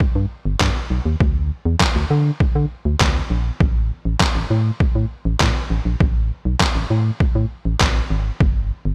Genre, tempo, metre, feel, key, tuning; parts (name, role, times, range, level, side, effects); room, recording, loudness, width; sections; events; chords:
dance-pop; 100 BPM; 4/4; straight; A4 = 440 Hz
organ-like FM bass; bass; 0.0-8.9 s; G1 to D3; -22 LUFS; equal; sidechain pumping
trip hop sampler-style drum kit; drums; 0.0-8.5 s; handclaps, kick drum, snare drum; -21 LUFS; equal; overdrive, gated reverb
little or no reverb; bright 1980s-style digital production; -19 LUFS; mono
0.0-8.9 A section